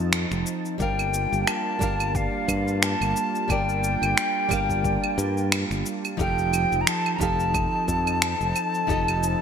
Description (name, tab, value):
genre	sunset chillout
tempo	89 BPM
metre	4/4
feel	swing 56% on 16ths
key	G minor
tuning	A4 = 440 Hz
part	flamenco guitar	accompaniment	0.0-9.4 s	F3 to F5	-30 LUFS	left 1 dB	auto-pan, ping-pong delay
part	lush unison pad	sustained chords	0.0-9.4 s	F3 to A5	-32 LUFS	right 1 dB	chorus
part	modern bright fingered electric bass	bass	0.0-9.3 s	F1 to G2	-27 LUFS	equal	none
part	electronic finger snaps, shaker and claves	drums	0.1-9.4 s	none	-26 LUFS	right 1 dB	gated reverb
part	mellow silver concert flute	melody	0.8-9.4 s	F5 to Bb5	-26 LUFS	equal	digital delay
part	electronic kick drum	drums	0.8-9.0 s	none	-31 LUFS	equal	none
room	moderate plate reverb, RT60 2.4 s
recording	bright 1980s-style digital production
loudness	-22 LUFS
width	side -7 dB against mid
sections	0.0-9.4 A section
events	none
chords	0.0 F7; 0.8 Gm9; 6.2 F7